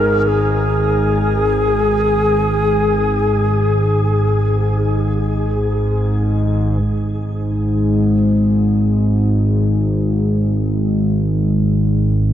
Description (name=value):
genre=dark ambient drone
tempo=free time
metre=none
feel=none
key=unclear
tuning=A4 = 440 Hz
part: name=reedy long shakuhachi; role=melody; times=0.0-5.7 s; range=G#4 to A#4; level=-19 LUFS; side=left 1 dB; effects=shimmer reverb, tape echo
part: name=gamelan-type bronze metallophone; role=arpeggios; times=0.0-5.3 s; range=G#3 to G#4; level=-29 LUFS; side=left 2 dB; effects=none
part: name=analog drone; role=drone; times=0.0-12.3 s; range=G#1 to G#2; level=-15 LUFS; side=equal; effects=chorus
part: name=backwards swelling texture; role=texture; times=0.0-6.8 s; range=B3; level=-44 LUFS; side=right 3 dB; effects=none
room=wet huge ambient reverb, RT60 8.8 s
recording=none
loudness=-14 LUFS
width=side -11 dB against mid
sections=0.0-6.8 A section; 6.8-12.3 B section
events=none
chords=0.0 G#m; 6.8 N.C.